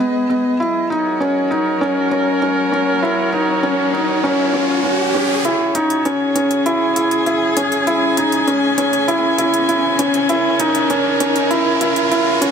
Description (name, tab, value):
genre	piano and strings electronica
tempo	99 BPM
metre	4/4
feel	straight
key	C# dorian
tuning	A4 = 444 Hz
part	dark string quartet	sustained chords	0.0-12.5 s	C#3 to G#5	-20 LUFS	left 1 dB	none
part	felt-muted upright piano	riff	0.0-12.5 s	B3 to E4	-16 LUFS	equal	ping-pong delay
part	riser	sound effects	2.3-12.5 s	none	-24 LUFS	equal	none
part	electronic hi-hat	drums	5.4-12.5 s	none	-25 LUFS	left 2 dB	high-pass filter on hats
room	moderate echo chamber reverb, RT60 2.3 s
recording	none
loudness	-14 LUFS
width	side -7 dB against mid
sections	0.0-5.4 A section; 5.4-12.5 B section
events	riser 2.3-5.4, 5.4-12.5; build-up 5.4-12.5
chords	0.0 G#m; 0.6 F#; 5.4 C#m